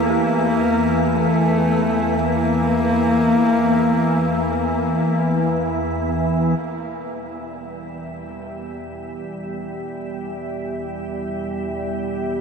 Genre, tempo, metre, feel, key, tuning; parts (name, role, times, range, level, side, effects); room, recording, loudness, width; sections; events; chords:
dark ambient drone; free time; E minor; A4 = 439 Hz
warm horsehead fiddle; melody; 0.0-5.5 s; A3 to A#3; -21 LUFS; left 2 dB; ping-pong delay
dark detuned synth bell; arpeggios; 0.0-6.6 s; E4 to G4; -37 LUFS; right 3 dB
organ-like drone; drone; 0.0-12.4 s; E2 to G3; -21 LUFS; right 1 dB; ensemble chorus, built-in reverb
icy glass pad; texture; 0.0-12.4 s; E5; -36 LUFS; left 1 dB; chorus, built-in reverb
dark analog pad; sustained chords; 6.6-12.4 s; B3 to G5; -30 LUFS; right 2 dB; chorus
wet huge ambient reverb, RT60 9.1 s; in a vast, echoing space; -18 LUFS; side -5 dB against mid
0.0-6.6 A section; 6.6-12.4 B section
0.0 Em